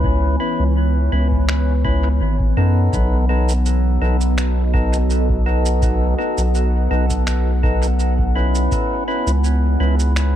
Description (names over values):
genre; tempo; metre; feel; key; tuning
ambient dub; 83 BPM; 4/4; swing 53% on 16ths; unclear; A4 = 440 Hz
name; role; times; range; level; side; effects
deep dark ambient pad; sustained chords; 0.0-10.4 s; E3 to G#5; -24 LUFS; equal; chorus, built-in reverb
percussive tonewheel organ; stabs; 0.0-10.0 s; B3 to B4; -24 LUFS; left 2 dB; overdrive, stopped rotary speaker, dub echo
round analog bass; bass; 0.0-10.4 s; G#1 to F#2; -17 LUFS; equal; none
electronic kick drum; drums; 0.0-8.9 s; none; -23 LUFS; equal; none
electronic finger snaps and shaker; drums; 1.5-10.3 s; none; -28 LUFS; right 2 dB; dub echo
room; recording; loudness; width
light reverb; echo-heavy mix; -15 LUFS; side -11 dB against mid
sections
0.0-10.4 A section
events
none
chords
0.0 C#m7; 2.9 B7; 8.7 C#m7